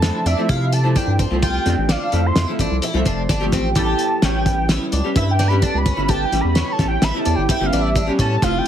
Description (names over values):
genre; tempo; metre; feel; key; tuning
progressive instrumental, band music in an uneven meter; 129 BPM; 5/4; straight; unclear; A4 = 438 Hz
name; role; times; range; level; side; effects
wide unison lead; melody; 0.0-8.7 s; E5 to C6; -24 LUFS; right 2 dB; none
archtop guitar, miked and amplified; accompaniment; 0.0-8.7 s; F3 to A5; -23 LUFS; equal; double-tracked left and right
picked twelve-string acoustic guitar; arpeggios; 0.0-8.7 s; C4 to G4; -26 LUFS; left 1 dB; wide subtle chorus
round analog bass; bass; 0.0-8.6 s; F1 to C3; -20 LUFS; equal; none
cloth-damped thuddy drum kit; drums; 0.0-8.7 s; hi-hat, kick drum, snare drum; -21 LUFS; equal; none
room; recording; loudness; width
light reverb; heavily compressed radio sound; -16 LUFS; side -10 dB against mid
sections
0.0-8.7 A section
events
analog synth lead solo 0.0-8.7; hollow-body jazz guitar fill 2.8-3.8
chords
0.0 Dm9; 3.8 A7